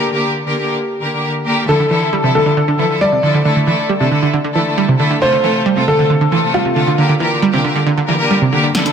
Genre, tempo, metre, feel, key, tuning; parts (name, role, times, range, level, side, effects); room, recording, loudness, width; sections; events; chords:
uplifting trance; 136 BPM; 4/4; straight; A4 = 442 Hz
dark baby grand piano; second line; 0.0-8.7 s; F4 to D5; -18 LUFS; left 2 dB; ping-pong delay
rich studio string section; sustained chords; 0.0-8.9 s; C3 to Bb4; -17 LUFS; left 1 dB
wide unison pluck; arpeggios; 1.7-8.9 s; C3 to G3; -15 LUFS; right 3 dB; ping-pong delay
punchy analog drum machine; drums; 8.7-8.9 s; hi-hat, snare drum; -14 LUFS; equal
light reverb; -12 LUFS; side -7 dB against mid
0.0-8.7 A section
drum fill 8.7
0.0 Gm; 1.7 Dmadd9; 3.5 Asus4; 5.2 F; 7.0 Gm